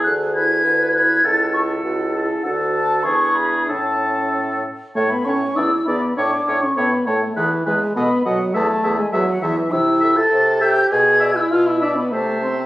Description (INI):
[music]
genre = quick classical-period movement for wind quintet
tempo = 100 BPM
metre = 2/4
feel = rubato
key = A major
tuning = A4 = 440 Hz
[part]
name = mellow silver concert flute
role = melody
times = 0.0-12.7 s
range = E5 to A6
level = -20 LUFS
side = left 1 dB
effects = none
[part]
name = warm oboe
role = second line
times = 0.0-12.7 s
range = G#4 to E5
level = -23 LUFS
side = equal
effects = none
[part]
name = warm French horn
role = accompaniment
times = 0.0-12.7 s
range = E3 to B4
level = -21 LUFS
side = equal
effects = none
[part]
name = warm clarinet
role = accompaniment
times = 0.0-12.7 s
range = C#4 to D5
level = -29 LUFS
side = right 2 dB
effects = none
[part]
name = clear bassoon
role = bass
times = 0.1-12.7 s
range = C#2 to C3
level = -24 LUFS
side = equal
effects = none
[sound]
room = moderate recital hall reverb, RT60 1.4 s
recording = recorded on a phone in the room, studio ambience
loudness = -16 LUFS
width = side -17 dB against mid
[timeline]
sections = 0.0-5.0 A section; 5.0-12.7 A section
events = none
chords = 0.0 E7/D; 1.2 A/C#; 2.4 D; 3.0 E7; 3.7 A; 5.6 E7; 6.2 A; 7.4 E; 8.0 B7; 8.6 E; 9.7 Am/C; 10.9 E5/B; 12.1 Am/C